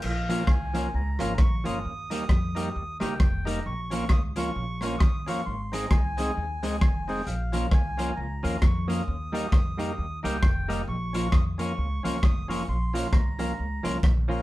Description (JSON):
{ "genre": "ska", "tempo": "133 BPM", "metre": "4/4", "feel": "swing 59% on 8ths", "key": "Bb dorian", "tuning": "A4 = 440 Hz", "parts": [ { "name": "melodica", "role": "melody", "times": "0.0-14.0 s", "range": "F5 to Eb6", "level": "-35 LUFS", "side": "equal", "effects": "slapback echo" }, { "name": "upright bass", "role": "bass", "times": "0.0-14.4 s", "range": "F1 to F2", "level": "-31 LUFS", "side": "equal", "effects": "none" }, { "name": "raw garage drum kit", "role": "drums", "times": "0.0-14.4 s", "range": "crash cymbal, hi-hat, kick drum, rim click", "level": "-25 LUFS", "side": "equal", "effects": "none" }, { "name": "semi-hollow electric guitar", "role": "accompaniment", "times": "0.3-14.4 s", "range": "F3 to Ab4", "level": "-32 LUFS", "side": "right 1 dB", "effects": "tremolo, slapback echo" }, { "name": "percussive tonewheel organ", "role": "stabs", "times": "0.3-14.4 s", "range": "C4 to Bb4", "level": "-35 LUFS", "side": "left 3 dB", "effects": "overdrive" } ], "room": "moderate studio reverb, RT60 0.5 s", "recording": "band playing live in one room", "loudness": "-24 LUFS", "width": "side -17 dB against mid", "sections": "0.0-14.4 A section", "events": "none", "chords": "0.0 Bbm; 1.8 Eb; 3.6 Bbm; 5.5 Ab; 7.3 Bbm; 9.1 Eb; 10.9 Bbm", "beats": "| 0.03 0.48 0.93 1.39 | 1.84 2.29 2.74 3.20 | 3.65 4.10 4.55 5.00 | 5.46 5.91 6.36 6.81 | 7.27 7.72 8.17 8.62 | 9.07 9.52 9.97 10.43 | 10.88 11.33 11.78 12.23 | 12.68 13.13 13.58 14.03" }